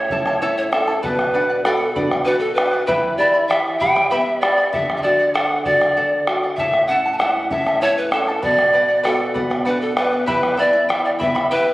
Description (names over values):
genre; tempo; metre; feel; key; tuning
andean folk, Andean ensemble; 65 BPM (dotted quarters); 6/8; straight; B minor; A4 = 441 Hz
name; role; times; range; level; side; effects
breathy pan flute; melody; 0.0-11.7 s; A4 to A5; -18 LUFS; equal; none
charango; accompaniment; 0.0-11.7 s; E4 to B5; -24 LUFS; equal; none
nylon-string guitar; accompaniment; 0.0-11.7 s; A2 to A4; -26 LUFS; equal; none
bombo; percussion; 0.1-11.5 s; none; -23 LUFS; equal; none
room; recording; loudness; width
wet recital hall reverb, RT60 1.4 s; recorded on a phone in the room, studio reverb; -16 LUFS; side -18 dB against mid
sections
0.0-11.7 A section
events
none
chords
0.0 A; 1.0 Bm; 2.9 Em; 4.7 D; 6.6 A; 8.4 Bm; 10.3 Em